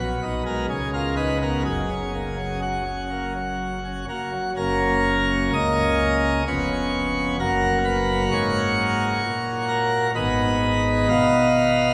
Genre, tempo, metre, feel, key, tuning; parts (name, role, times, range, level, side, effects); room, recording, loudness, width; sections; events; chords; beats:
classical, chorale-style piece for pipe organ; 64 BPM; 3/4; uneven beats, rubato; F# major; A4 = 440 Hz
pipe organ, plenum; solo; 0.0-11.9 s; E#1 to E#5; -22 LUFS; equal
wet church reverb, RT60 3.9 s; -23 LUFS; mono
0.0-4.6 A section; 4.6-11.9 B section
0.0 G#m7/B; 0.7 C#9; 1.6 F#; 6.5 C#7/E#; 7.4 F#; 10.1 G#m
0.68 | 1.65 2.62 3.60 | 4.57 5.53 6.46 | 7.38 8.30 9.21 | 10.13 11.08